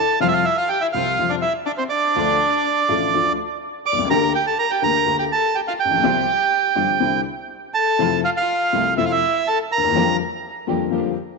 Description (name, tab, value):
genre	tango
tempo	124 BPM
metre	4/4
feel	rubato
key	F major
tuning	A4 = 441 Hz
part	bandoneon	melody	0.0-10.2 s	C5 to D6	-19 LUFS	right 7 dB	tape echo
part	rich violin	second line	0.0-10.2 s	C4 to D5	-26 LUFS	left 13 dB	none
part	warm upright piano	accompaniment	0.2-11.1 s	G1 to G4	-23 LUFS	left 14 dB	none
part	muted studio string section	stabs	0.2-11.1 s	D3 to G4	-30 LUFS	right 14 dB	none
room	moderate plate reverb, RT60 2.8 s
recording	1960s-style stereo with parts hard left and right, nothing above 8.0 kHz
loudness	-17 LUFS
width	side -3 dB against mid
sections	0.2-11.4 A section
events	none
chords	0.2 Fsus2; 2.2 Dm; 4.1 Gmadd9/D; 6.0 Csus4; 7.0 Cadd9; 8.0 Fmaj7; 10.0 Bb6/F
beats	| 0.21 0.70 1.19 1.68 | 2.16 2.65 3.13 3.62 | 4.10 4.58 5.07 5.55 | 6.03 6.51 7.00 7.50 | 7.99 8.49 8.98 9.47 | 9.96 10.44 10.92